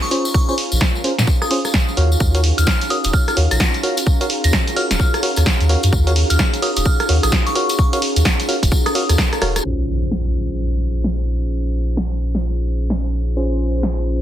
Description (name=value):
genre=UK garage, two-step garage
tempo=129 BPM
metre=4/4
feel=swing 61% on 16ths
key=Bb minor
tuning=A4 = 440 Hz
part: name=glassy synth bell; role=melody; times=0.0-9.0 s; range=Db6 to Bb6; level=-25 LUFS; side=left 1 dB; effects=chorus, phaser, tape echo
part: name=warm analog pad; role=sustained chords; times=0.0-14.2 s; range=Db4 to C5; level=-31 LUFS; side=equal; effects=wide subtle chorus, sidechain pumping
part: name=tambourine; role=percussion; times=0.0-9.6 s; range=none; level=-28 LUFS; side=left 2 dB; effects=none
part: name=warbly tape-like pad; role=texture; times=0.0-14.2 s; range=Db4 to F5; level=-28 LUFS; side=right 1 dB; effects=chorus, built-in reverb, sidechain pumping
part: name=FM electric piano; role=stabs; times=0.1-14.2 s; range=Db4 to F5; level=-25 LUFS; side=equal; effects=chorus, low-pass filter
part: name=punchy analog drum machine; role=drums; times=0.1-13.9 s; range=hi-hat, rim click, snare drum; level=-21 LUFS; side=equal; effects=none
part: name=electronic kick drum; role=drums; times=0.3-9.3 s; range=none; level=-17 LUFS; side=equal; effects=none
part: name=saturated sub bass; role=bass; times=0.7-14.2 s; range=Eb1 to Bb2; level=-17 LUFS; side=equal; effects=none
part: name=impact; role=sound effects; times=9.6-11.5 s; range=none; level=-28 LUFS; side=equal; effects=none
room=light reverb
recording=dense, heavily limited modern master, low-pass filter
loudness=-15 LUFS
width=side -11 dB against mid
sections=0.0-9.6 A section; 9.6-14.2 B section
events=drum fill 9.2-9.6; band accent 9.5; impact 9.6-11.5; filter sweep 9.6-14.2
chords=0.0 Bbm7; 2.0 Ebm7; 9.6 Bbm7